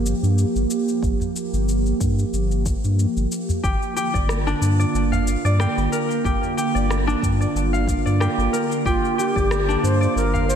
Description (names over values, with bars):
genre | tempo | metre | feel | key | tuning
organic downtempo | 92 BPM | 4/4 | swing 55% on 16ths | unclear | A4 = 441 Hz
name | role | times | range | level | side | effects
warbly tape-like pad | sustained chords | 0.0-10.6 s | D3 to G4 | -24 LUFS | right 3 dB | chorus, built-in reverb, sidechain pumping
warm sub bass | bass | 0.0-10.6 s | G1 to G2 | -21 LUFS | equal | sidechain pumping
electronic cabasa and rim click | drums | 0.1-10.6 s | none | -32 LUFS | left 2 dB | small room ambience
electronic kick drum | drums | 1.0-9.5 s | none | -25 LUFS | equal | small room ambience
udu | percussion | 1.2-10.5 s | none | -28 LUFS | equal | none
concert harp | arpeggios | 3.6-10.6 s | D4 to F5 | -24 LUFS | left 1 dB | tape echo
low Native American-style wooden flute | melody | 8.9-10.6 s | F4 to C5 | -23 LUFS | left 1 dB | ping-pong delay
room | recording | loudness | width
moderate lush hall reverb, RT60 1.9 s, small room ambience | dreamy mix soaked in reverb | -18 LUFS | side -8 dB against mid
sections
0.0-10.6 A section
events
none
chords
0.0 Gm7; 3.6 Bb/G